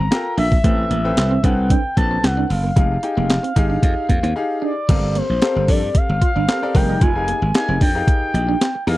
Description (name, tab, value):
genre	early-eighties boogie funk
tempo	113 BPM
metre	4/4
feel	straight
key	G phrygian from 4.9 s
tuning	A4 = 444 Hz
part	expressive synth lead	melody	0.0-9.0 s	C5 to Bb5	-23 LUFS	left 1 dB	chorus
part	electric guitar at the edge of break-up	riff	0.0-8.8 s	G3 to F4	-25 LUFS	right 5 dB	wide subtle chorus
part	slap bass	bass	0.0-9.0 s	F1 to G2	-20 LUFS	equal	none
part	clear baby grand piano	accompaniment	0.1-9.0 s	C4 to G5	-26 LUFS	left 3 dB	none
part	boom bap sampler-style drum kit	drums	0.1-9.0 s	crash cymbal, handclaps, hi-hat, kick drum, snare drum	-17 LUFS	equal	none
part	mellow synth brass	second line	5.7-7.0 s	F3 to Bb4	-25 LUFS	equal	chorus
room	little or no reverb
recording	dry, close 1970s-style studio recording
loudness	-15 LUFS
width	side -17 dB against mid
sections	0.0-4.9 A section; 4.9-9.0 B section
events	break 4.4-4.9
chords	0.0 Gm9; 0.6 Am9; 2.8 Fm9; 4.9 Gm11; 6.7 Fm11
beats	0.11 | 0.64 1.17 1.71 2.24 | 2.77 3.30 3.83 4.36 | 4.89 5.42 5.95 6.48 | 7.01 7.54 8.08 8.61